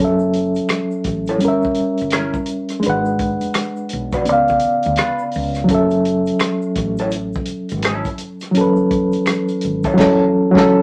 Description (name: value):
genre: R&B, neo-soul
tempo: 84 BPM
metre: 4/4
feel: swing 61% on 16ths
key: F# minor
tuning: A4 = 440 Hz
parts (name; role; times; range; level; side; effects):
- reed electric piano; accompaniment; 0.0-10.8 s; C#3 to F#5; -18 LUFS; equal; fast tremolo
- woody fretless electric bass; bass; 0.0-10.8 s; F#1 to D2; -29 LUFS; equal; none
- egg shaker and finger snaps; percussion; 0.2-10.0 s; none; -35 LUFS; equal; none
- warm soul drum kit; drums; 0.3-10.7 s; crash cymbal, hi-hat, kick drum, rim click, snare drum; -26 LUFS; equal; none
- electric guitar through a small old amp; second line; 1.3-10.8 s; C#4 to B4; -25 LUFS; equal; wah
room: moderate studio reverb, RT60 0.5 s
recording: none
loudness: -18 LUFS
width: mono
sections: 0.0-10.8 A section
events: band accent 10.0-10.8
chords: 0.0 F#m7; 1.4 Gdim7; 2.8 G#m7b5; 4.3 C#7b9; 5.7 F#m7